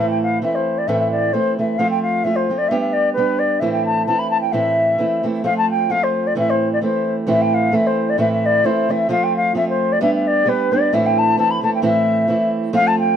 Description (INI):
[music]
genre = celtic folk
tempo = 132 BPM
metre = 2/4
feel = swing 55% on 8ths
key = A minor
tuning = A4 = 445 Hz
[part]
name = mellow wooden flute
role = melody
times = 0.0-13.2 s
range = B4 to B5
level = -18 LUFS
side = left 2 dB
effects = none
[part]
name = fingerpicked old ladder-braced acoustic guitar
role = accompaniment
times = 0.0-13.2 s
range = A2 to G4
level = -19 LUFS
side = right 2 dB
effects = none
[sound]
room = small room ambience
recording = dry, close 1970s-style studio recording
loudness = -15 LUFS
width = side -8 dB against mid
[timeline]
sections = 0.0-7.3 A section; 7.3-13.2 A section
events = none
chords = 0.0 Am; 1.8 F; 2.7 G; 3.6 Am; 5.4 F; 6.4 Am; 9.1 F; 10.0 G; 10.9 Am